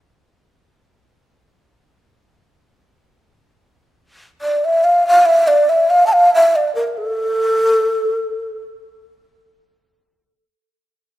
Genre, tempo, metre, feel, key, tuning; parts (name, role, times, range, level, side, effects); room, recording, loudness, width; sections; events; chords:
japanese traditional, Japanese chamber music; free time; A miyako bushi; A4 = 442 Hz
breathy mellow long shakuhachi; solo; 4.4-8.6 s; A4 to A5; -12 LUFS; equal
moderate concert hall reverb, RT60 2.3 s; -12 LUFS; side -15 dB against mid
0.0-3.6 A section; 3.6-11.2 B section